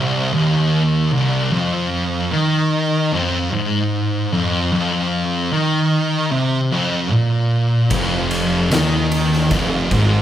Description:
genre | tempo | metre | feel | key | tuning
stoner and doom metal | 75 BPM | 4/4 | straight | unclear | A4 = 440 Hz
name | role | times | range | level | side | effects
thick fuzz guitar | riff | 0.0-10.2 s | C2 to Eb3 | -19 LUFS | left 4 dB | distortion
thick fuzz guitar | riff | 0.0-10.2 s | C2 to Eb3 | -19 LUFS | right 4 dB | distortion
fuzz fingered electric bass | bass | 7.9-10.2 s | F1 to Eb2 | -23 LUFS | equal | overdrive
oversized low-tuned drum kit | drums | 7.9-10.1 s | kick drum, ride cymbal, snare drum | -22 LUFS | equal | none
room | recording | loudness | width
moderate large studio reverb, RT60 1.2 s | band playing live in one room | -16 LUFS | side -11 dB against mid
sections
0.0-10.2 A section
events
none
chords
0.0 Cm; 1.5 F5

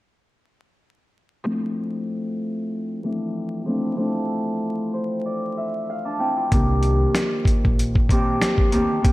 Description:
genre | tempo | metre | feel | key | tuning
hip hop, boom-bap hip-hop | 95 BPM | 4/4 | swing 56% on 16ths | D minor | A4 = 439 Hz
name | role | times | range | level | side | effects
Celtic harp | accompaniment | 1.4-9.1 s | Eb3 to A5 | -23 LUFS | equal | cassette tape, high-pass filter, low-pass filter
upright bass | bass | 6.5-9.1 s | Bb1 to D2 | -23 LUFS | equal | none
dusty soul sampler-style drum kit | drums | 6.5-9.1 s | hi-hat, kick drum, snare drum | -19 LUFS | equal | none
room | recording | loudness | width
moderate lush hall reverb, RT60 1.7 s, small room reverb | dreamy mix soaked in reverb, vinyl crackle | -20 LUFS | side -18 dB against mid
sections
1.5-9.1 A section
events
filter sweep on harp 1.5-9.1; harp fill 4.6-6.5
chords
1.5 Dm9; 6.5 Cm9

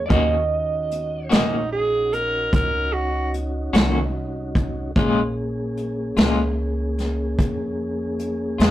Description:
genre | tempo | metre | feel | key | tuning
slow blues | 50 BPM (dotted quarters) | 12/8 | straight | unclear | A4 = 440 Hz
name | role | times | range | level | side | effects
electric slide guitar | melody | 0.0-1.3 s | D5 to Eb5 | -23 LUFS | right 4 dB | none
mellow tonewheel organ | sustained chords | 0.0-8.7 s | Bb3 to Ab4 | -28 LUFS | left 1 dB | slow rotary speaker
upright bass | bass | 0.0-8.7 s | Bb1 to F2 | -27 LUFS | equal | none
clean electric guitar | accompaniment | 0.1-8.7 s | Bb2 to Gb4 | -22 LUFS | left 3 dB | tremolo
vintage brush drum kit | drums | 0.1-8.7 s | hi-hat, kick drum, snare drum | -20 LUFS | equal | none
growling tenor saxophone | second line | 1.3-3.3 s | Eb4 to Bb4 | -22 LUFS | right 2 dB | none
room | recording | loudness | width
light reverb | rough rehearsal-room recording, tube saturation | -20 LUFS | side -14 dB against mid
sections
0.0-8.7 A section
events
none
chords
0.1 Ebm7; 5.0 Bbm7

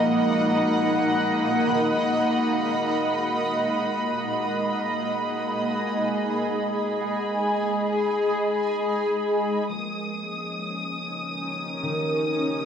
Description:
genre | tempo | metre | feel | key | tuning
ambient | free time | none | none | unclear | A4 = 440 Hz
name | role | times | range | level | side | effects
granular cloud pad | sustained chords | 0.0-12.7 s | Bb3 to F#5 | -24 LUFS | equal | built-in reverb, cassette tape
concert harp | arpeggios | 0.0-12.7 s | D#3 to Gb5 | -33 LUFS | equal | cassette tape, tape echo
organ-like drone | drone | 0.0-9.8 s | Ab3 | -33 LUFS | right 2 dB | ensemble chorus, built-in reverb, cassette tape
dark studio violin section | texture | 0.0-12.7 s | B5 to Eb6 | -31 LUFS | right 1 dB | cassette tape
room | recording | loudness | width
wet small room reverb, RT60 0.5 s | home recording on cassette | -22 LUFS | side -8 dB against mid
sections
0.0-9.7 A section; 9.7-12.7 B section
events
fade-out on harp 0.0-9.7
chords
0.0 Bmaj7; 3.3 Abm7; 9.7 Eb7

